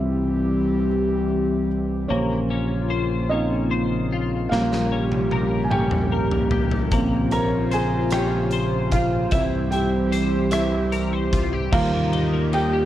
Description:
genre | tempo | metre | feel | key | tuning
six-eight pop ballad | 50 BPM (dotted quarters) | 6/8 | straight | unclear | A4 = 438 Hz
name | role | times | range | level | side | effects
felt-muted upright piano | accompaniment | 0.0-12.9 s | Db3 to Bb5 | -25 LUFS | right 2 dB | none
airy breathy pad | sustained chords | 0.0-12.9 s | Db3 to C5 | -25 LUFS | equal | chorus
fingered electric bass | bass | 0.0-12.9 s | Bb1 to Eb2 | -25 LUFS | equal | none
twelve-string electric guitar | arpeggios | 2.1-12.9 s | Bb3 to C5 | -29 LUFS | left 7 dB | ensemble chorus
huge arena drum kit | drums | 4.5-12.7 s | crash cymbal, hi-hat, kick drum, ride cymbal, rim click, snare drum, toms | -26 LUFS | equal | none
room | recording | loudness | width
light reverb, small room ambience | worn, warbling old tape, cassette tape, warbly pitch drift | -19 LUFS | side -12 dB against mid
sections
0.0-2.1 A section; 2.1-11.7 B section; 11.7-12.9 C section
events
felt piano solo 0.0-2.1, 2.1-11.7, 11.7-12.9; drum fill 4.5-6.9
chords
0.0 C; 2.1 Bbmadd9; 4.5 Gdim/Bb; 6.9 Bbmadd9; 9.3 C; 11.7 Eb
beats
0.90 | 2.10 3.31 | 4.51 5.71 | 6.92 8.12 | 9.32 10.53 | 11.73

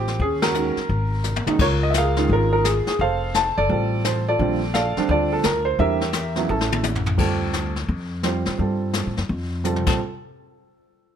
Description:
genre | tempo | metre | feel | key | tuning
jazz piano trio | 171 BPM | 4/4 | swing 64% on 8ths | Bb major | A4 = 440 Hz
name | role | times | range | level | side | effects
warm concert grand piano | melody | 0.0-10.0 s | Db3 to A5 | -22 LUFS | right 2 dB | plate reverb
upright bass | bass | 0.0-10.0 s | F1 to A2 | -24 LUFS | left 1 dB | none
jazz brush drum kit | drums | 0.1-9.9 s | brushed snare drum, crash cymbal, hi-hat, kick drum, ride cymbal, snare drum, toms | -26 LUFS | left 3 dB | none
room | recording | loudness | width
light reverb | none | -19 LUFS | side -8 dB against mid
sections
0.0-7.2 A section; 7.2-10.0 B section; 10.0-11.2 C section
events
band accent 0.4; drum fill 1.2-1.6, 6.5-7.2, 9.6-10.0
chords
0.2 Ebm7; 0.9 Absus2; 1.6 Db6; 3.0 F; 4.4 Bbmaj9; 5.8 Em7b5; 6.5 A; 7.2 Dm7; 7.9 Fsus2; 8.6 G9sus4; 9.3 Fadd9; 9.8 Bbsus2; 10.0 N.C.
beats
| 0.20 0.55 0.90 1.25 | 1.59 1.94 2.29 2.64 | 2.99 3.34 3.69 4.04 | 4.39 4.74 5.09 5.44 | 5.79 6.14 6.49 6.84 | 7.19 7.54 7.89 8.24 | 8.60 8.95 9.30 9.65

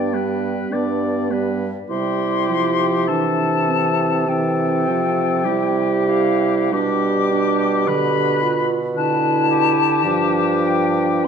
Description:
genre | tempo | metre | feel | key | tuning
classical, slow romantic movement for wind quintet | 45-56 BPM | 4/4 | rubato | unclear | A4 = 439 Hz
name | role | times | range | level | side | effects
bright concert flute | melody | 0.0-11.3 s | F5 to D6 | -22 LUFS | left 8 dB | none
warm oboe | second line | 0.0-11.2 s | G4 to D5 | -26 LUFS | left 5 dB | none
clear clarinet | accompaniment | 0.0-11.3 s | B3 to G4 | -23 LUFS | right 9 dB | none
warm French horn | accompaniment | 0.0-11.3 s | D3 to B3 | -23 LUFS | left 1 dB | none
clear bassoon | bass | 0.0-11.2 s | G2 to C3 | -23 LUFS | right 3 dB | none
room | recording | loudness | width
wet recital hall reverb, RT60 1.7 s | dark, warm production | -16 LUFS | side -6 dB against mid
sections
0.0-11.3 A section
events
none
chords
0.0 G; 1.9 C; 6.7 G/B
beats
0.71 | 1.90 3.09 4.29 5.46 | 6.72 7.88 8.97 10.05 | 11.26

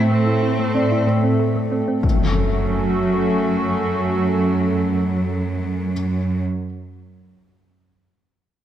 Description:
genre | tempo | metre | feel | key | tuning
cinematic | 62 BPM (dotted quarters) | 6/8 | straight | F# minor | A4 = 440 Hz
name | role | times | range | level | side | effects
warm cello | melody | 0.0-6.4 s | F#3 to C4 | -25 LUFS | right 1 dB | tape echo
hollow soft pad | sustained chords | 0.0-6.4 s | A3 to A4 | -22 LUFS | equal | chorus
thumb-piano-like synth pluck | arpeggios | 0.0-2.0 s | A3 to A4 | -25 LUFS | right 2 dB | chorus, tape echo
rich symphonic cello section | bass | 0.0-6.4 s | F#2 to A2 | -22 LUFS | right 2 dB | none
felt-muted upright piano | texture | 0.0-2.1 s | C5 to D5 | -29 LUFS | left 5 dB | tape echo
impact | sound effects | 2.0-4.0 s | none | -21 LUFS | left 2 dB | none
room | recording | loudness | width
light reverb | close, detailed microphones | -17 LUFS | side -10 dB against mid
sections
0.0-2.0 A section; 2.0-5.9 B section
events
impact 2.0-4.0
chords
0.0 Am; 2.0 F#m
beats
| 0.10 1.07 | 2.04 3.00 | 3.97 4.94

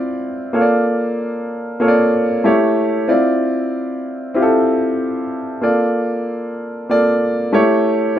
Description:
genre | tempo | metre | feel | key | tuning
soul | 94 BPM | 4/4 | swing 58% on 16ths | D minor | A4 = 441 Hz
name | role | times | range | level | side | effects
warm grand piano | solo | 0.0-8.2 s | A3 to D5 | -15 LUFS | equal | none
room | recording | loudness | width
wet small room reverb, RT60 0.5 s | rough home demo mix | -15 LUFS | side -11 dB against mid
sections
0.0-8.2 A section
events
none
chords
0.0 Dm9; 0.5 Bbmaj7; 2.5 A7; 3.1 Dm9; 5.6 Bbmaj7; 7.5 A7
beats
| 0.54 1.18 1.81 2.45 | 3.08 3.72 4.36 4.99 | 5.63 6.26 6.90 7.54 | 8.17

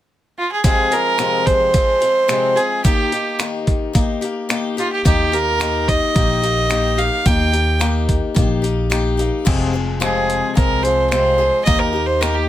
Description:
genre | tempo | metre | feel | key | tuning
honky-tonk and classic country | 109 BPM | 4/4 | straight | F minor | A4 = 441 Hz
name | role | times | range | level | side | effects
clear fiddle | melody | 0.4-12.5 s | F4 to G5 | -17 LUFS | right 2 dB | none
picked swing-style acoustic guitar | accompaniment | 0.6-12.5 s | F2 to Ab4 | -21 LUFS | left 5 dB | none
dusty soul sampler-style drum kit | drums | 0.6-12.4 s | crash cymbal, finger snaps, hi-hat, kick drum | -19 LUFS | equal | none
upright bass | bass | 5.1-12.5 s | F1 to Eb2 | -21 LUFS | equal | none
room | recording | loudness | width
little or no reverb | close, detailed microphones | -15 LUFS | side -12 dB against mid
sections
0.6-9.5 A section; 9.5-12.5 B section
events
none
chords
0.0 N.C.; 0.6 Fm; 2.8 Eb; 9.5 Fm; 11.7 Eb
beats
0.09 | 0.64 1.19 1.74 2.29 | 2.85 3.40 3.95 4.50 | 5.05 5.60 6.16 6.71 | 7.26 7.81 8.36 8.91 | 9.46 10.02 10.57 11.12 | 11.67 12.22

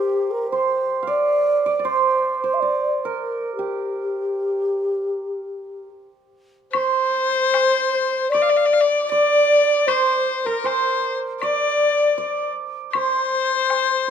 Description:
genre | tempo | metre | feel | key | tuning
chinese traditional, Chinese chamber ensemble | 78 BPM | 4/4 | rubato | unclear | A4 = 439 Hz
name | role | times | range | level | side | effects
mellow low xiao | melody | 0.0-14.1 s | G4 to F5 | -21 LUFS | equal | none
hammered dulcimer | second line | 0.0-14.1 s | G4 to F5 | -24 LUFS | right 7 dB | none
rich erhu | second line | 6.7-14.1 s | Bb4 to F5 | -21 LUFS | left 9 dB | none
woodblock | percussion | 6.7-13.9 s | none | -28 LUFS | left 5 dB | none
room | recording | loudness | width
moderate recital hall reverb, RT60 1.4 s | close, detailed microphones | -18 LUFS | side -8 dB against mid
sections
0.0-6.7 A section; 6.7-14.1 B section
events
none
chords
none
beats
| 0.50 1.26 2.03 2.79 | 3.56 4.33 5.12 5.92 | 6.74 7.53 8.32 9.10 | 9.88 10.65 11.41 12.17 | 12.94 13.70

